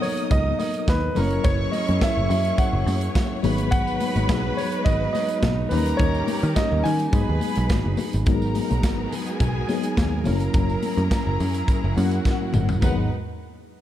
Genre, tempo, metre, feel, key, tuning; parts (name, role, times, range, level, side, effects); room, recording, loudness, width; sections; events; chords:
disco; 106 BPM; 4/4; straight; G# minor; A4 = 440 Hz
clear concert grand piano; melody; 0.0-7.7 s; A#4 to G#5; -28 LUFS; right 2 dB; analog delay
warm studio violin section; second line; 0.0-13.1 s; D#4 to D#6; -32 LUFS; equal
mellow tine electric piano; accompaniment; 0.0-13.1 s; E3 to A#4; -27 LUFS; left 3 dB; medium stereo tremolo
clear studio string section; sustained chords; 0.0-13.1 s; B2 to C#5; -33 LUFS; equal
modern studio drum kit; drums; 0.0-13.0 s; hi-hat, kick drum, snare drum, toms; -25 LUFS; equal
congas; percussion; 0.0-13.1 s; -33 LUFS; left 4 dB
tambourine; percussion; 0.0-13.1 s; -45 LUFS; right 6 dB
picked electric bass; bass; 0.3-13.1 s; F#1 to D#3; -23 LUFS; equal
light reverb, studio ambience; dark, warm production; -20 LUFS; side -12 dB against mid
0.0-8.3 A section; 8.3-12.8 B section
drum fill 12.3-12.8
0.0 Bmaj7; 1.2 F#7; 3.4 G#m7; 5.7 D#7; 7.1 G#m7; 10.3 F#7; 12.8 G#m7